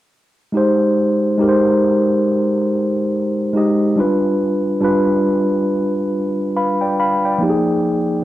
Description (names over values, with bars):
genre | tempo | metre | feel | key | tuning
hip hop | 70 BPM | 4/4 | swing 60% on 16ths | unclear | A4 = 440 Hz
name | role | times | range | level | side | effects
mellow tine electric piano | accompaniment | 0.5-8.2 s | F3 to B5 | -14 LUFS | equal | fast stereo tremolo, cassette tape, low-pass filter
room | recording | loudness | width
wet small room ambience, RT60 0.5 s | none | -14 LUFS | side -15 dB against mid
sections
0.6-8.2 A section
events
tine electric piano fill 6.1-7.4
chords
0.6 Abmaj7; 4.0 G7; 7.4 Bb7sus4/F